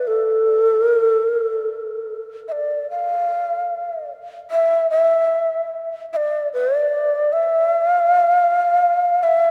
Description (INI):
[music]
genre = japanese traditional, Japanese chamber music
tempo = 71-80 BPM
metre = 4/4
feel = rubato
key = unclear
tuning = A4 = 440 Hz
[part]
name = breathy mellow long shakuhachi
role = solo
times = 0.0-9.5 s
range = A4 to F5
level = -19 LUFS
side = equal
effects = none
[sound]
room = moderate cathedral reverb, RT60 5.5 s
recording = none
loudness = -19 LUFS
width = mono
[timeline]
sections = 0.0-9.5 A section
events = none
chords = none